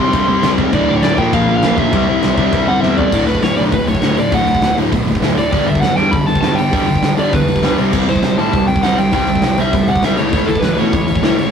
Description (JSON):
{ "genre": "punk rock", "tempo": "200 BPM", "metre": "4/4", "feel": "straight", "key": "unclear", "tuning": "A4 = 438 Hz", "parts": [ { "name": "biting lead guitar", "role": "melody", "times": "0.0-11.5 s", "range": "A4 to C6", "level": "-18 LUFS", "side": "equal", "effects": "overdrive" }, { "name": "distorted electric guitar", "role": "riff", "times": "0.0-11.5 s", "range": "D2 to C4", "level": "-23 LUFS", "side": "left 1 dB", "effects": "overdrive" }, { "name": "overdriven semi-hollow guitar", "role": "riff", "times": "0.0-11.5 s", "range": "D2 to C4", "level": "-19 LUFS", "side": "left 6 dB", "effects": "none" }, { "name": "sludgy distorted guitar", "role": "riff", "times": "0.0-11.5 s", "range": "D2 to C4", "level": "-19 LUFS", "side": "right 6 dB", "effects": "overdrive" }, { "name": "fuzz picked electric bass", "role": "bass", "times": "0.0-11.5 s", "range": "D1 to B2", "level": "-22 LUFS", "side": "equal", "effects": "overdrive" }, { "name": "big rock drum kit", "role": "drums", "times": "0.1-11.5 s", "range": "crash cymbal, hi-hat, kick drum, snare drum, toms", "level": "-18 LUFS", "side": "right 1 dB", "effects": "none" } ], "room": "moderate studio reverb, RT60 0.6 s", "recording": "rough rehearsal-room recording, tube saturation", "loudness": "-12 LUFS", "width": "side -7 dB against mid", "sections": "0.0-3.1 A section; 3.1-11.5 B section", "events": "drum fill 2.8", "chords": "0.0 C5; 0.7 D5; 1.2 Bb5; 1.9 C; 3.1 D5; 5.5 G; 7.8 C5; 10.2 A/C#" }